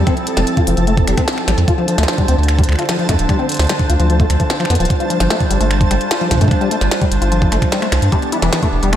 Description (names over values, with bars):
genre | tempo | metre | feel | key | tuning
IDM | 149 BPM | 4/4 | straight | unclear | A4 = 440 Hz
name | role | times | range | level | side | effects
hollow soft pad | sustained chords | 0.0-9.0 s | D3 to C5 | -21 LUFS | right 1 dB | chorus
deep acid bass | arpeggios | 0.0-9.0 s | E3 to F4 | -20 LUFS | left 3 dB | lush chorus, digital delay, slapback echo
round analog bass | bass | 0.0-9.0 s | D1 to G2 | -15 LUFS | equal | none
flickering grainy texture | texture | 0.0-9.0 s | A5 | -26 LUFS | right 1 dB | built-in reverb
electronic kick drum | drums | 0.1-8.7 s | none | -17 LUFS | equal | studio reverb
glitchy drum kit | drums | 0.1-9.0 s | finger snaps, hi-hat, snare drum | -22 LUFS | equal | studio reverb, digital delay
room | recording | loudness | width
moderate scoring stage reverb, RT60 1.7 s, digital ambience | big arena sound | -13 LUFS | side -11 dB against mid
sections
0.0-9.0 A section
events
none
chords
0.0 Fmaj7; 1.7 Dm7; 4.9 G7sus4; 8.1 Em7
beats
| 0.07 0.47 0.88 1.28 | 1.68 2.08 2.48 2.89 | 3.29 3.69 4.10 4.50 | 4.90 5.30 5.71 6.11 | 6.51 6.92 7.32 7.72 | 8.12 8.53 8.93